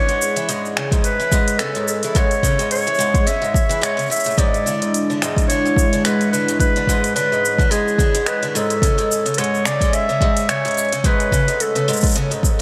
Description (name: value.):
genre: folktronica.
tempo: 108 BPM.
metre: 4/4.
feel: swing 56% on 16ths.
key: A major.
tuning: A4 = 440 Hz.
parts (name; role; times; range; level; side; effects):
warm clarinet; melody; 0.0-12.2 s; G#4 to E5; -22 LUFS; equal; analog delay.
warm analog pad; sustained chords; 0.0-12.6 s; G#3 to G#5; -28 LUFS; equal; chorus.
picked twelve-string acoustic guitar; arpeggios; 0.0-12.6 s; G#2 to E3; -26 LUFS; equal; none.
organic electronic drum kit; drums; 0.1-12.6 s; cabasa, finger snaps, hi-hat; -27 LUFS; equal; overdrive.
electronic kick drum; drums; 0.9-12.6 s; none; -21 LUFS; equal; overdrive.
room: moderate huge ambient reverb, RT60 4.1 s.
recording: dreamy mix soaked in reverb.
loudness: -18 LUFS.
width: mono.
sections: 0.0-12.6 A section.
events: none.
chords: 0.0 Amaj7 (rootless); 4.4 E7; 8.8 Amaj7.